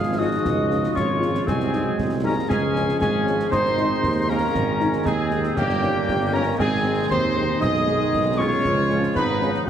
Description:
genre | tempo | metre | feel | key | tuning
military-style march for wind band | 117 BPM | 2/4 | straight | unclear | A4 = 440 Hz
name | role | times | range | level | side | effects
dark trumpet section | melody | 0.0-9.7 s | G4 to F5 | -26 LUFS | right 2 dB | none
mellow euphonium | second line | 0.0-9.7 s | F#3 to F4 | -27 LUFS | right 2 dB | none
mellow woodwind section | second line | 0.0-9.7 s | Bb3 to G#4 | -29 LUFS | left 2 dB | none
piccolo | second line | 0.0-9.7 s | F#5 to F6 | -28 LUFS | left 3 dB | none
bright trombone section | sustained chords | 0.0-9.7 s | Eb3 to Db4 | -31 LUFS | right 2 dB | none
mellow tuba | bass | 0.0-9.7 s | G1 to F#2 | -25 LUFS | right 2 dB | none
mellow French horn section | accompaniment | 0.2-9.5 s | Eb3 to F4 | -31 LUFS | left 4 dB | none
concert snare drum, concert bass drum and clash cymbals | drums | 0.4-9.7 s | none | -30 LUFS | left 1 dB | none
room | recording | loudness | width
wet scoring stage reverb, RT60 1.9 s | heavily compressed radio sound | -19 LUFS | side -9 dB against mid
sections
0.0-9.7 A section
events
none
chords
0.0 Db; 1.5 Ab7/C; 2.5 Db; 3.5 Ab; 5.6 Eb7/G; 6.6 Ab; 7.6 G#m/B; 8.6 C#

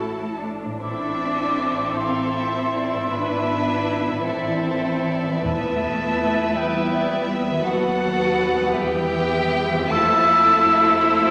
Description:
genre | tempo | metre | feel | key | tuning
classical | 45-57 BPM (dotted quarters) | 6/8 | rubato | A minor | A4 = 440 Hz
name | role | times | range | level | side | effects
rich chamber violin section | melody | 0.0-11.3 s | B4 to A5 | -34 LUFS | equal | none
rich chamber violin section | second line | 0.0-11.3 s | G4 to E5 | -31 LUFS | equal | none
warm chamber viola section | accompaniment | 0.0-11.3 s | A3 to G4 | -28 LUFS | equal | none
concert harp | arpeggios | 0.0-11.3 s | E2 to D5 | -33 LUFS | equal | none
warm chamber cello section | bass | 0.0-11.3 s | A2 to E4 | -30 LUFS | equal | none
warm studio double bass section | bass | 0.0-11.3 s | G#1 to F2 | -36 LUFS | equal | none
mellow hollow silver concert flute | second line | 0.8-11.3 s | E5 to E6 | -24 LUFS | equal | none
timpani | percussion | 5.4-6.5 s | E2 | -36 LUFS | equal | none
room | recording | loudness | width
wet concert hall reverb, RT60 2.1 s | none | -21 LUFS | mono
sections
0.8-11.3 A section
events
none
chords
0.0 A; 0.8 Am; 3.1 E7/G#; 4.3 Am; 5.5 Em; 7.7 B7/D#; 8.7 Em; 9.9 F

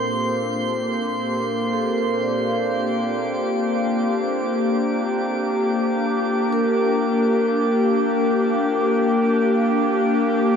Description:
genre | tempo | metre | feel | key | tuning
ambient | free time | none | none | Bb major | A4 = 436 Hz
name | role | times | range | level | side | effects
airy breathy pad | sustained chords | 0.0-10.6 s | Bb2 to G4 | -21 LUFS | left 2 dB | chorus
vibraphone with medium mallets | arpeggios | 0.0-10.6 s | A4 to D5 | -26 LUFS | equal | ping-pong delay
overtone-sweeping drone | drone | 0.0-10.6 s | Bb3 to F4 | -27 LUFS | equal | chorus, built-in reverb
drifting glass-harmonics texture | texture | 0.0-10.6 s | G4 to C6 | -26 LUFS | right 2 dB | chorus, built-in reverb
room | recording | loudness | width
wet huge ambient reverb, RT60 8.5 s | dark, warm production | -18 LUFS | side -6 dB against mid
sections
0.0-10.6 A section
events
fade-in on analog synth pad 0.0-10.6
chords
0.0 Bb6

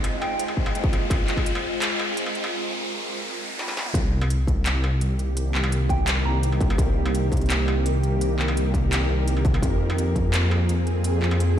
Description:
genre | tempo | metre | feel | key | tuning
half-time drum and bass | 169 BPM | 4/4 | half-time | C minor | A4 = 440 Hz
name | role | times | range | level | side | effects
bowed-like drone | sustained chords | 0.0-11.6 s | Eb3 to C5 | -29 LUFS | right 1 dB | built-in reverb, sidechain pumping
industrial drum kit | drums | 0.0-11.5 s | handclaps, hi-hat, snare drum, struck metal, toms | -29 LUFS | equal | overdrive, high-pass filter on hats, small room ambience, high-pass filter on perc, high-pass filter on snare, high-pass filter on toms
riser | sound effects | 0.0-3.9 s | none | -31 LUFS | equal | none
pulsing gated texture | texture | 0.0-2.5 s | Eb5 | -39 LUFS | left 2 dB | chorus, built-in reverb
soft synth bell | melody | 0.2-0.4, 5.9-6.6 s | G5 to Bb5 | -32 LUFS | right 3 dB | chorus, phaser, ping-pong delay
electronic kick drum | drums | 0.6-1.4, 3.9-10.2 s | none | -24 LUFS | equal | distortion, overdrive, small room ambience
dark detuned saw bass | bass | 3.9-11.6 s | C2 to F2 | -22 LUFS | equal | none
room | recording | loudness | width
light reverb | played on a big sound system in a bare room, stone room reverb | -21 LUFS | side -10 dB against mid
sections
0.0-3.9 A section; 3.9-11.6 B section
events
build-up 0.0-3.9; riser 0.0-3.9; break 2.5-3.9; drum fill 3.6-3.9; drop 3.9-11.6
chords
0.0 Fm; 3.9 Cm7; 9.6 Fm

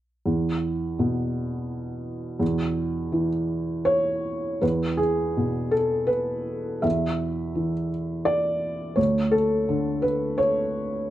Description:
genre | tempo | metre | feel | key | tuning
neoclassical minimalist piano | 83 BPM | 3/4 | uneven beats, rubato | unclear | A4 = 440 Hz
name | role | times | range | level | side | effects
felt-muted upright piano | solo | 0.3-11.1 s | D2 to E5 | -23 LUFS | equal | none
room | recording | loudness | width
light reverb | dark, warm production | -23 LUFS | side -13 dB against mid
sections
0.3-4.6 A section; 4.6-11.1 B section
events
none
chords
0.3 E5; 9.0 Dmaj7(no3)

